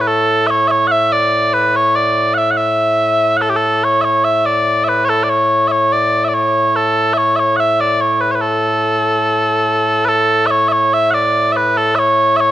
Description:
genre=scottish traditional, Scottish pipe music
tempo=72 BPM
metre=2/4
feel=straight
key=A major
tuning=A4 = 440 Hz
part: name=mellow small bagpipes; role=solo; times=0.0-12.5 s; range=A2 to F#5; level=-12 LUFS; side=equal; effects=none
room=light reverb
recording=close, detailed microphones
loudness=-12 LUFS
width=side -12 dB against mid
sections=0.0-10.1 A section; 10.1-12.5 A section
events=none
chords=none

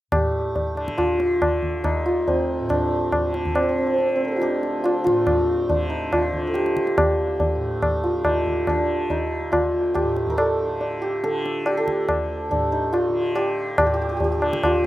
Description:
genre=indian classical, Hindustani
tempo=141 BPM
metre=4/4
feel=straight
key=D raga bhairavi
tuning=A4 = 439 Hz
part: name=santur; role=melody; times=0.1-14.9 s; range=C4 to D5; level=-22 LUFS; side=equal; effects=slapback echo
part: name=tanpura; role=drone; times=0.1-14.9 s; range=D2 to D3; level=-31 LUFS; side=equal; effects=none
part: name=tabla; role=percussion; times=0.1-14.9 s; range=none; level=-24 LUFS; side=equal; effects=none
room=light reverb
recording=recorded outdoors, with no room sound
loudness=-20 LUFS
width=side -15 dB against mid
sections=0.1-13.8 A section; 13.8-14.9 B section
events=none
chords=none

